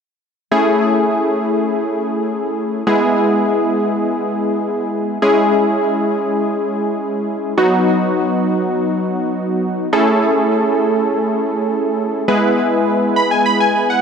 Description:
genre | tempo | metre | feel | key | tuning
pop | 102 BPM | 4/4 | straight | unclear | A4 = 440 Hz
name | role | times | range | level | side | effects
warm analog keys | solo | 0.5-14.0 s | F#3 to B5 | -14 LUFS | equal | chorus, digital delay
room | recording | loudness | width
moderate plate reverb, RT60 2.4 s | none | -14 LUFS | side -6 dB against mid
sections
0.5-9.9 A section; 9.9-14.0 B section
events
synth keys fill 12.9-14.0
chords
0.5 Amaj7; 2.9 E; 5.2 C#m; 7.6 B; 9.9 Amaj7; 12.3 E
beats
| 0.52 1.10 1.69 2.28 | 2.87 3.46 4.04 4.63 | 5.22 5.81 6.40 6.99 | 7.58 8.16 8.75 9.34 | 9.93 10.52 11.10 11.69 | 12.28 12.87 13.46

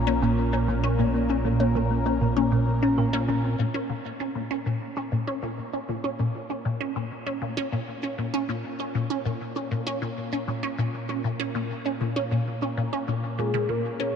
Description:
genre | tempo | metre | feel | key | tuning
ambient, sequencer-driven space music | 98 BPM | 4/4 | straight | Bb minor | A4 = 440 Hz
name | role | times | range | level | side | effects
phased analog pad | sustained chords | 0.0-14.2 s | Bb2 to Bb4 | -30 LUFS | right 1 dB | phaser, chorus
resonant blip pluck | riff | 0.0-14.1 s | Bb2 to Db4 | -27 LUFS | equal | phaser, wide subtle chorus, ping-pong delay
warm sub bass | bass | 0.0-3.6 s | Bb1 | -31 LUFS | equal | none
thumb-piano-like synth pluck | arpeggios | 0.1-3.6 s | Bb3 to Bb4 | -29 LUFS | moving between left 6 dB and right 1 dB | chorus, auto-pan, ping-pong delay
soft octave-layered synth lead | melody | 13.4-14.2 s | Ab4 to Db5 | -27 LUFS | left 4 dB | chorus, ping-pong delay
room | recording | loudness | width
moderate huge ambient reverb, RT60 8.7 s | dark, warm production | -24 LUFS | side -7 dB against mid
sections
0.0-3.6 A section; 3.6-14.2 B section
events
fade-in on analog synth pad 3.6-14.2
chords
0.0 Bbm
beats
0.53 | 1.14 1.75 2.37 2.98 | 3.59 4.20 4.82 5.43 | 6.04 6.65 7.26 7.88 | 8.49 9.10 9.71 10.32 | 10.94 11.55 12.16 12.77 | 13.39 14.00

